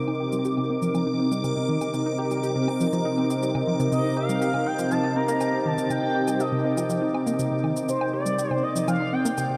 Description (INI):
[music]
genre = ambient, sequencer-driven space music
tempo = 121 BPM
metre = 4/4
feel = straight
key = C minor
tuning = A4 = 441 Hz
[part]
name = sweeping resonant pad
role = sustained chords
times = 0.0-9.6 s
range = C3 to Bb4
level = -28 LUFS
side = equal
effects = chorus
[part]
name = tight sequenced synth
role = riff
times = 0.0-9.6 s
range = C3 to G4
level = -30 LUFS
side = equal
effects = chorus, tape echo
[part]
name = bubbling stepped-filter texture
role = texture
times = 0.0-9.6 s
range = D6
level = -40 LUFS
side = equal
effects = chorus, built-in reverb
[part]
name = woodblock and cabasa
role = percussion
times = 0.1-9.5 s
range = none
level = -40 LUFS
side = equal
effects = tape echo
[part]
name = expressive synth lead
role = melody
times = 3.9-9.6 s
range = C5 to Bb5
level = -32 LUFS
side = equal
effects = subtle chorus, tape echo
[sound]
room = wet huge ambient reverb, RT60 7.8 s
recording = none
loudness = -25 LUFS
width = mono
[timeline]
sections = 0.0-9.6 A section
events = fade-in on drum 0.0-9.6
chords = 0.0 Cm7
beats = 0.45 0.95 1.44 | 1.94 2.43 2.93 3.42 | 3.92 4.42 4.91 5.41 | 5.91 6.40 6.90 7.39 | 7.89 8.38 8.88 9.38